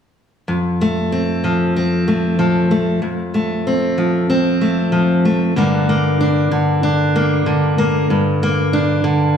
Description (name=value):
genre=folk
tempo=95 BPM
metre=4/4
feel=straight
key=unclear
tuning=A4 = 444 Hz
part: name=fingerpicked steel-string acoustic guitar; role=accompaniment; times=0.5-9.4 s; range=F2 to D4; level=-14 LUFS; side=equal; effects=none
room=moderate concert hall reverb, RT60 1.7 s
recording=studio reverb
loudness=-14 LUFS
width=side -7 dB against mid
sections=0.5-9.4 A section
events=none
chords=0.5 F; 5.6 Gm